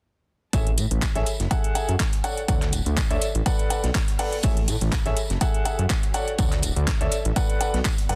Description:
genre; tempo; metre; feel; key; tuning
piano house; 123 BPM; 4/4; swing 55% on 16ths; A major; A4 = 439 Hz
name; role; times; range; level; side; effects
clear upright piano; riff; 0.5-8.2 s; G#4 to F#5; -31 LUFS; equal; sidechain pumping, tape echo
fat analog bass; bass; 0.5-8.2 s; D1 to A2; -27 LUFS; equal; sidechain pumping
electronic kick drum; drums; 0.5-8.0 s; none; -27 LUFS; equal; none
garage drum kit; drums; 0.5-8.2 s; handclaps, hi-hat; -32 LUFS; equal; none
loose indie drum kit; drums; 0.5-8.2 s; hi-hat, snare drum, tambourine; -40 LUFS; equal; sidechain pumping on hats, high-pass filter on hats, high-pass filter on snare, sidechain pumping on perc, high-pass filter on perc, high-pass filter on room
dark studio string section; texture; 0.5-8.2 s; B3 to B5; -48 LUFS; equal; none
room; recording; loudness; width
little or no reverb; dense, heavily limited modern master; -24 LUFS; mono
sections
0.5-8.2 A section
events
none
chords
0.5 Amaj7; 1.3 F#m9; 2.2 Dmaj7; 3.5 Bm7; 4.4 Amaj7; 5.2 F#m9; 6.1 Dmaj7; 7.4 Bm7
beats
| 0.53 1.02 1.51 2.00 | 2.48 2.97 3.46 3.95 | 4.43 4.92 5.41 5.90 | 6.39 6.87 7.36 7.85

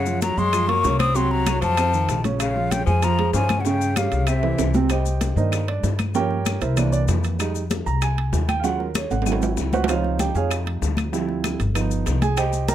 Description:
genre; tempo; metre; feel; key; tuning
Afro-Cuban jazz; 192 BPM; 4/4; straight; C minor from 4.9 s; A4 = 439 Hz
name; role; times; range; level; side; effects
breathy hollow jazz flute; melody; 0.0-4.7 s; E5 to Eb6; -24 LUFS; left 1 dB; none
clear tenor saxophone; second line; 0.0-4.7 s; C3 to C4; -27 LUFS; left 6 dB; none
upright bass; bass; 0.0-12.7 s; G1 to G2; -23 LUFS; left 1 dB; none
warm grand piano; accompaniment; 0.1-12.7 s; C3 to Bb5; -25 LUFS; right 6 dB; none
congas; percussion; 0.1-12.7 s; none; -30 LUFS; left 3 dB; none
maracas; percussion; 0.1-12.7 s; none; -37 LUFS; left 12 dB; none
bongos; percussion; 0.2-12.7 s; none; -34 LUFS; left 8 dB; none
timbales; percussion; 0.2-12.7 s; none; -30 LUFS; right 8 dB; none
claves; percussion; 0.5-12.5 s; none; -35 LUFS; left 14 dB; none
room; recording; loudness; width
little or no reverb; close, detailed microphones; -19 LUFS; side -11 dB against mid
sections
0.0-4.9 A section; 4.9-12.7 B section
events
drum fill 4.4-4.9, 9.1-9.9; grand piano solo 4.9-12.7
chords
0.0 Gbmaj9; 1.2 Gbmaj7#11/C; 1.8 F7; 2.4 Bbm7; 3.6 Dbmaj7#11; 4.3 C; 4.9 Cm7; 6.1 Gm7b5; 6.8 C7; 7.4 Fm9; 8.6 Ebm11; 9.3 Ab7alt; 9.9 Dbmaj7; 11.1 Dm11; 11.8 Gaug7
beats
0.22 0.53 0.84 | 1.16 1.47 1.78 2.09 | 2.40 2.71 3.03 3.34 | 3.65 3.96 4.27 4.59 | 4.90 5.21 5.52 5.83 | 6.15 6.46 6.77 7.08 | 7.39 7.71 8.02 8.33 | 8.64 8.95 9.27 9.58 | 9.89 10.20 10.51 10.82 | 11.13 11.44 11.75 12.06 | 12.38 12.69

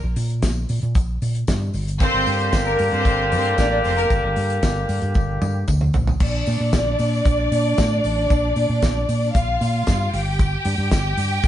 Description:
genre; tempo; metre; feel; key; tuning
disco; 114 BPM; 4/4; straight; unclear; A4 = 440 Hz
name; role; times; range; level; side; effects
hollow-body short-scale fingered electric bass; bass; 0.0-11.5 s; F1 to Bb2; -22 LUFS; equal; none
damped 70s drum kit; drums; 0.2-11.5 s; crash cymbal, hi-hat, kick drum, snare drum, toms; -22 LUFS; equal; none
tambourine; percussion; 0.2-11.5 s; none; -41 LUFS; left 4 dB; none
rich studio string section; second line; 2.0-11.5 s; Bb3 to G5; -22 LUFS; equal; none
clear horn section; stabs; 2.0-5.6 s; D3 to G4; -22 LUFS; equal; none
room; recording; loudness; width
moderate stone room reverb, RT60 1.1 s; band playing live in one room, nothing above 10.5 kHz; -18 LUFS; side -12 dB against mid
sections
0.0-6.2 A section; 6.2-11.5 B section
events
drum fill 5.2-6.2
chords
0.0 N.C.; 1.7 Gm; 5.9 N.C.; 6.2 Bb; 10.1 N.C.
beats
0.43 0.95 1.48 | 2.01 2.53 3.06 3.58 | 4.11 4.63 5.16 5.68 | 6.21 6.73 7.25 7.78 | 8.30 8.82 9.35 9.87 | 10.39 10.91 11.44

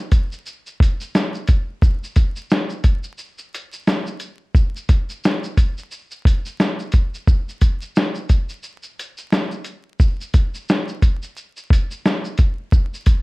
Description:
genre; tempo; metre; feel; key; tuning
hip hop; 88 BPM; 4/4; swing 58% on 16ths; none; none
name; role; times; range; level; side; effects
lo-fi sampler-style drum kit; drums; 0.1-13.2 s; hi-hat, kick drum, shaker, snare drum; -16 LUFS; equal; none
room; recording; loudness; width
light reverb; vinyl crackle; -17 LUFS; side -24 dB against mid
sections
0.0-13.2 A section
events
none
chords
none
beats
0.46 1.14 | 1.82 2.50 3.18 3.86 | 4.55 5.23 5.91 6.59 | 7.27 7.96 8.64 9.32 | 10.00 10.68 11.36 12.05 | 12.73

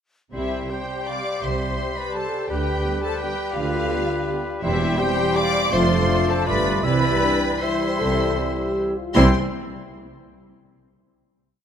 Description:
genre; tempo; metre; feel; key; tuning
classical, orchestral ballroom waltz; 147-181 BPM; 3/4; rubato; C major; A4 = 439 Hz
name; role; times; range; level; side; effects
rich symphonic violin section; melody; 0.3-9.4 s; E5 to D6; -29 LUFS; left 2 dB; none
bright silver concert flute; second line; 0.3-9.4 s; G4 to G5; -32 LUFS; left 2 dB; none
clear clarinet; second line; 0.3-9.3 s; E4 to G4; -29 LUFS; left 2 dB; none
clear oboe; second line; 0.3-9.3 s; B4 to E5; -33 LUFS; equal; none
warm symphonic violin section; second line; 0.3-9.4 s; E4 to D5; -31 LUFS; left 2 dB; none
mellow bassoon; accompaniment; 0.3-9.3 s; G3 to A3; -32 LUFS; right 1 dB; none
warm symphonic viola section; accompaniment; 0.3-9.4 s; C4 to D5; -29 LUFS; equal; none
dark symphonic cello section; bass; 0.3-9.4 s; E2 to D3; -27 LUFS; right 2 dB; none
rich symphonic double bass section; bass; 0.3-9.4 s; E1 to D2; -26 LUFS; right 2 dB; none
bright trombone section; sustained chords; 0.7-9.3 s; C3 to A3; -31 LUFS; right 4 dB; none
warm French horn section; sustained chords; 0.7-9.3 s; B3 to A4; -29 LUFS; left 4 dB; none
room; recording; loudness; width
moderate concert hall reverb, RT60 2.3 s; none; -19 LUFS; side -8 dB against mid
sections
0.3-9.2 A section; 9.2-10.3 final chord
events
none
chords
0.3 C; 2.5 G7/D; 4.6 C/E; 5.7 Dm7/F; 6.5 G9; 6.8 C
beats
| 0.33 0.69 1.07 | 1.42 1.78 2.15 | 2.50 2.85 3.22 | 3.56 3.92 4.29 | 4.64 5.00 5.37 | 5.72 6.08 6.47 | 6.83 7.22 7.62 | 8.00 8.38 8.78 | 9.16

